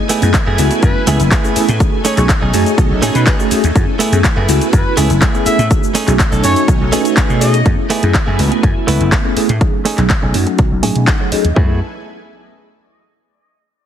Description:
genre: filtered disco house.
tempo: 123 BPM.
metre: 4/4.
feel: straight.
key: F# dorian.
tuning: A4 = 439 Hz.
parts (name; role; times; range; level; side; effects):
mellow tine electric piano; accompaniment; 0.0-11.8 s; F#3 to G#5; -18 LUFS; equal; medium stereo tremolo, phaser, sidechain pumping, low-pass filter.
string machine, full ensemble; sustained chords; 0.0-11.8 s; A3 to G#5; -23 LUFS; equal; ensemble chorus, sidechain pumping, low-pass filter.
direct-recorded clean electric guitar; riff; 0.1-11.8 s; A3 to G#5; -20 LUFS; right 5 dB; sidechain pumping, low-pass filter.
house drum kit; drums; 0.1-11.5 s; cabasa, handclaps, hi-hat; -20 LUFS; equal; overdrive, sidechain pumping on hats, sidechain pumping on perc.
vintage slap bass; bass; 0.2-11.8 s; F#1 to B2; -15 LUFS; equal; sidechain pumping, low-pass filter.
electronic kick drum; drums; 0.3-11.7 s; none; -14 LUFS; equal; overdrive.
warm trumpet section; melody; 0.8-7.7 s; B4 to E5; -23 LUFS; left 1 dB; sidechain pumping, low-pass filter, dub echo.
room: light reverb, digital ambience.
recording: heavily compressed radio sound.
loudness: -11 LUFS.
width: side -9 dB against mid.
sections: 0.0-7.7 A section; 7.7-11.6 B section; 11.6-13.5 C section.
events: drop 0.0-7.7; filter sweep 7.7-11.6; clean electric guitar fill 10.6-11.6.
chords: 0.0 F#m11; 1.8 B13; 3.8 F#m11; 5.7 B13; 7.7 F#m11; 9.6 B13; 11.6 F#m11 (rootless).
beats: 0.34 0.83 1.32 | 1.80 2.29 2.78 3.27 | 3.76 4.24 4.73 5.22 | 5.71 6.20 6.68 7.17 | 7.66 8.15 8.63 9.12 | 9.61 10.10 10.59 11.07 | 11.56.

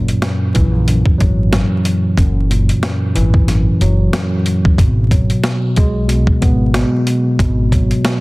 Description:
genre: hip hop, boom-bap hip-hop.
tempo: 92 BPM.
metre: 4/4.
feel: swing 57% on 16ths.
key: unclear.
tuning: A4 = 440 Hz.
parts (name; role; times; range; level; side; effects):
tine electric piano; accompaniment; 0.0-8.2 s; F#2 to B3; -15 LUFS; equal; medium stereo tremolo.
upright bass; bass; 0.0-7.9 s; F#1 to D#2; -16 LUFS; equal; none.
boom bap sampler-style drum kit; drums; 0.1-8.2 s; hi-hat, kick drum, snare drum; -16 LUFS; equal; none.
room: little or no reverb.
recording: dense, heavily limited modern master, vinyl crackle.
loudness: -12 LUFS.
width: side -23 dB against mid.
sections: 0.0-8.2 A section.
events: none.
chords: 0.0 F#9; 4.8 G#m7.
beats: 0.22 0.87 1.52 | 2.18 2.83 3.48 4.13 | 4.78 5.44 6.09 6.74 | 7.39 8.04.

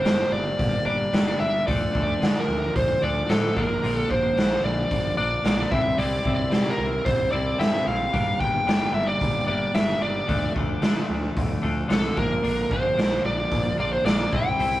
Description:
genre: quiet-loud alternative rock.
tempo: 111 BPM.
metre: 4/4.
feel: straight.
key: unclear.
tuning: A4 = 442 Hz.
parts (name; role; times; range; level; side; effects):
smooth overdriven lead guitar; melody; 0.0-14.8 s; A4 to G5; -25 LUFS; equal; tape echo.
twelve-string electric guitar; arpeggios; 0.0-14.8 s; G2 to E4; -28 LUFS; left 1 dB; none.
fuzz fingered electric bass; bass; 0.0-14.8 s; G1 to D3; -30 LUFS; equal; overdrive.
raw garage drum kit; drums; 0.1-14.7 s; hi-hat, kick drum, snare drum; -25 LUFS; equal; none.
room: moderate studio reverb, RT60 0.6 s.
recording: rough rehearsal-room recording.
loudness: -21 LUFS.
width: side -15 dB against mid.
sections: 0.0-14.8 A section.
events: none.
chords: 0.0 Gm; 1.7 Dm; 3.6 Bb; 5.7 C; 8.1 Gm; 10.3 Dm; 12.2 Bb.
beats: 0.04 0.58 1.12 | 1.67 2.21 2.75 3.29 | 3.83 4.37 4.91 5.44 | 5.98 6.52 7.06 7.59 | 8.13 8.67 9.21 9.74 | 10.28 10.82 11.36 11.90 | 12.44 12.98 13.52 14.06 | 14.60.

